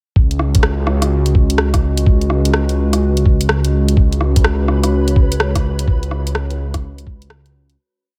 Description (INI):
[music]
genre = future garage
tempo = 126 BPM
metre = 4/4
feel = swing 65% on 16ths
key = unclear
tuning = A4 = 440 Hz
[part]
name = warbly tape-like pad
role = sustained chords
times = 0.7-7.8 s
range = G#3 to C#5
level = -24 LUFS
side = equal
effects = chorus, built-in reverb, sidechain pumping
[part]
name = swelling detuned saw bass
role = bass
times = 0.2-7.8 s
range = C#2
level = -19 LUFS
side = equal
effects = sidechain pumping
[part]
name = electronic kick drum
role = drums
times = 0.2-7.2 s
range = none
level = -16 LUFS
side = equal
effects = small room ambience
[part]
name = garage drum kit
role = drums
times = 0.3-7.8 s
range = hi-hat, rim click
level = -23 LUFS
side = equal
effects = small room ambience
[part]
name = flickering grainy texture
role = texture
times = 4.4-7.8 s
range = B4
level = -34 LUFS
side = equal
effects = built-in reverb
[sound]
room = light reverb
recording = none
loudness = -15 LUFS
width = mono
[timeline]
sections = 0.2-7.8 groove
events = fade-out 5.2-7.8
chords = 0.2 C#5